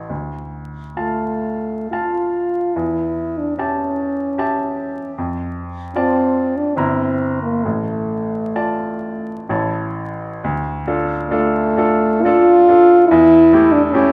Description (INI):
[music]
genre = classical, romantic duo for French horn and grand piano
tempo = 61-77 BPM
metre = 3/4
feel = rubato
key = D minor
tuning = A4 = 440 Hz
[part]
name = bright baby grand piano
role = accompaniment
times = 0.0-14.1 s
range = G1 to Bb5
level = -23 LUFS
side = equal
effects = none
[part]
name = mellow French horn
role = melody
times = 1.0-14.1 s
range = A3 to F4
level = -17 LUFS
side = equal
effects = none
[sound]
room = wet recital hall reverb, RT60 1.4 s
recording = dark, warm production, vinyl crackle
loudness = -17 LUFS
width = mono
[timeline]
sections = 0.0-10.4 A section; 10.4-14.1 A section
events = none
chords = 0.1 Dm; 2.8 A7/E; 5.2 Dm/F; 6.8 Edim/G; 7.6 Dm/A; 9.5 A; 10.4 Dm; 13.1 A7(no3)/E